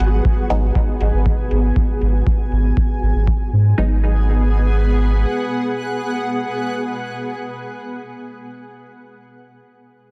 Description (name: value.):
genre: dub techno.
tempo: 119 BPM.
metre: 4/4.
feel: straight.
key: G# minor.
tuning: A4 = 440 Hz.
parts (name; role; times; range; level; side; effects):
granular cloud pad; sustained chords; 0.0-8.0 s; B3 to G#5; -26 LUFS; equal; built-in reverb, sidechain pumping.
soft dub sub bass; bass; 0.0-5.3 s; G#1 to G#2; -18 LUFS; equal; sidechain pumping.
electronic hi-hat; drums; 0.0-3.6 s; none; -39 LUFS; equal; low-pass filter on hats, low-pass filter on room.
flickering grainy texture; texture; 0.0-3.8 s; F#3 to F#4; -37 LUFS; equal; built-in reverb, sidechain pumping.
electronic kick drum; drums; 0.2-3.4 s; none; -20 LUFS; equal; none.
filtered dub chord stab; stabs; 0.5-8.0 s; F#3 to D#4; -29 LUFS; equal; chorus, phaser, sidechain pumping, dub echo.
room: digital ambience.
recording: dense, heavily limited modern master.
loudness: -18 LUFS.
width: mono.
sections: 0.0-3.8 A section; 3.8-7.8 B section.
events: filter sweep on drum 0.0-3.8; filter sweep on synth stab 0.0-3.8; filter sweep on ambient pad 0.0-3.8.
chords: 0.0 G#m7.